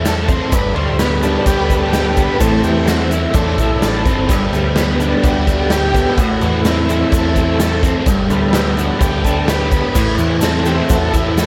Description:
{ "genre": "psychedelic rock", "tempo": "127 BPM", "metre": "4/4", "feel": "straight", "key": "A dorian", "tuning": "A4 = 440 Hz", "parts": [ { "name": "overdriven electric guitar", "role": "riff", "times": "0.0-11.5 s", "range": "G2 to A4", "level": "-20 LUFS", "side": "equal", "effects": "rotary speaker" }, { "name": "deep dub picked electric bass", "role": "bass", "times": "0.0-11.5 s", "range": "G1 to E2", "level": "-22 LUFS", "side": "equal", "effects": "none" }, { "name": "tanpura", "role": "drone", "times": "0.0-11.5 s", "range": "A2 to A3", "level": "-30 LUFS", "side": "equal", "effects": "none" }, { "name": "raw garage drum kit", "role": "drums", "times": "0.1-11.5 s", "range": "crash cymbal, kick drum, snare drum", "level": "-20 LUFS", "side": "equal", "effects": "none" }, { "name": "tube shaker", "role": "percussion", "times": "0.1-11.5 s", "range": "none", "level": "-34 LUFS", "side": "equal", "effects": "none" }, { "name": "combo organ", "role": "sustained chords", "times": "0.3-11.5 s", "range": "D3 to C5", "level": "-23 LUFS", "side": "equal", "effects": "none" } ], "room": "light reverb, studio reverb", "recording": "none", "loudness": "-15 LUFS", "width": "mono", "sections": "0.0-11.5 A section", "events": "transistor combo organ solo 0.0-11.5", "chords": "0.0 Am; 0.5 G; 2.4 Am; 4.3 G; 6.2 Am; 8.1 G; 10.0 Am" }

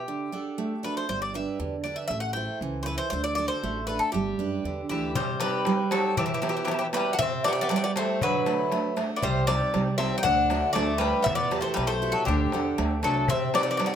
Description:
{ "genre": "greek folk, Greek bouzouki band", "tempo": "118 BPM", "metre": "2/4", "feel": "straight", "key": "unclear", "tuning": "A4 = 440 Hz", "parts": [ { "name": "Greek bouzouki", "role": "melody", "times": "0.0-13.9 s", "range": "G4 to G5", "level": "-28 LUFS", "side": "left 1 dB", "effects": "none" }, { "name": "picked steel-string acoustic guitar", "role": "accompaniment", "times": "0.0-14.0 s", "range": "B2 to F#5", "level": "-29 LUFS", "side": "right 5 dB", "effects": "none" }, { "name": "upright bass", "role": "bass", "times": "1.1-5.1, 9.2-13.3 s", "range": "G1 to F#2", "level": "-31 LUFS", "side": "equal", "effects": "none" }, { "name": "Greek bouzouki", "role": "second line", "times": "4.9-13.9 s", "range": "D3 to Eb4", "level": "-31 LUFS", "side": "left 3 dB", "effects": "none" }, { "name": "darbuka", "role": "percussion", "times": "5.2-13.9 s", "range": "none", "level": "-32 LUFS", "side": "left 3 dB", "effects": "none" } ], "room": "moderate small room reverb, RT60 0.6 s", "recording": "none", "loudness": "-24 LUFS", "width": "side -9 dB against mid", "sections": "0.0-5.2 A section; 5.2-13.3 B section", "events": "none", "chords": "0.1 D; 1.1 G; 2.1 Am; 3.1 D; 4.1 G; 5.2 Cm; 6.2 Em; 7.2 C; 8.2 D; 9.2 Cm; 10.2 D; 11.3 Emadd9; 12.3 D; 13.3 Cm" }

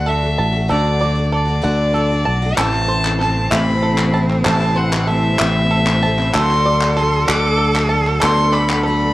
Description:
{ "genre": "indie folk with a building arrangement", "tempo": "64 BPM (dotted quarters)", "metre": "6/8", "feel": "straight", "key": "D mixolydian", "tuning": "A4 = 440 Hz", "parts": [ { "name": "rich fiddle", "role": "melody", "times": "0.0-9.1 s", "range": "D5 to D6", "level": "-21 LUFS", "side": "equal", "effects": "cassette tape" }, { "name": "felt-muted upright piano", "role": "accompaniment", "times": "0.0-9.1 s", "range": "A1 to E5", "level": "-32 LUFS", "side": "right 2 dB", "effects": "none" }, { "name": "picked twelve-string acoustic guitar", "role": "accompaniment", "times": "0.0-9.1 s", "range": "A2 to F#4", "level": "-24 LUFS", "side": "left 3 dB", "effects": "cassette tape" }, { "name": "bluegrass banjo", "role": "arpeggios", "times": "0.0-9.1 s", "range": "A4 to A5", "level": "-23 LUFS", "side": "right 3 dB", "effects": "cassette tape" }, { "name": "fingered electric bass", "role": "bass", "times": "0.0-9.1 s", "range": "A1 to D2", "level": "-18 LUFS", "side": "equal", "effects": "none" }, { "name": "clear cello", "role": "second line", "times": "2.6-9.1 s", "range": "C4 to A4", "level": "-23 LUFS", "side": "right 2 dB", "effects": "cassette tape, analog delay" }, { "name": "mellow tonewheel organ", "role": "sustained chords", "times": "2.6-9.1 s", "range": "C3 to A4", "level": "-29 LUFS", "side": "left 1 dB", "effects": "none" }, { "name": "group handclap", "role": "percussion", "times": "2.6-8.8 s", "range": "none", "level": "-23 LUFS", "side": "left 2 dB", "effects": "none" } ], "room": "moderate spring reverb, RT60 1.7 s, studio reverb", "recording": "home recording on cassette", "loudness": "-14 LUFS", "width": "side -16 dB against mid", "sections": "0.0-2.6 A section; 2.6-9.1 B section", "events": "none", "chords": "0.0 D; 2.6 Am; 6.3 D" }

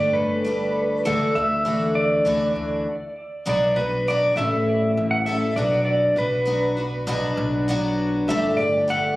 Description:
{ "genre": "folk rock and heartland rock", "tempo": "100 BPM", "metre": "4/4", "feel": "straight", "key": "unclear", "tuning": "A4 = 440 Hz", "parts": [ { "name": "clean lap steel guitar", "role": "melody", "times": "0.0-9.2 s", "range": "A4 to F#5", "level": "-22 LUFS", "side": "right 1 dB", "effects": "digital delay" }, { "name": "picked twelve-string acoustic guitar", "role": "accompaniment", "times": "0.0-9.2 s", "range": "A2 to A4", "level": "-24 LUFS", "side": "left 1 dB", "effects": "none" }, { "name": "upright bass", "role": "bass", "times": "0.0-9.2 s", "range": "G1 to D2", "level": "-29 LUFS", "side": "equal", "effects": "none" } ], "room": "light reverb", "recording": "recorded on a phone in the room, club reverb, compression", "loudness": "-19 LUFS", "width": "side -18 dB against mid", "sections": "0.0-3.5 A section; 3.5-9.2 A section", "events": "stop 2.9-3.5", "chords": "0.0 Gsus2; 1.1 Dadd9; 3.5 Bm; 4.4 A; 5.6 Bm; 8.3 Gsus2" }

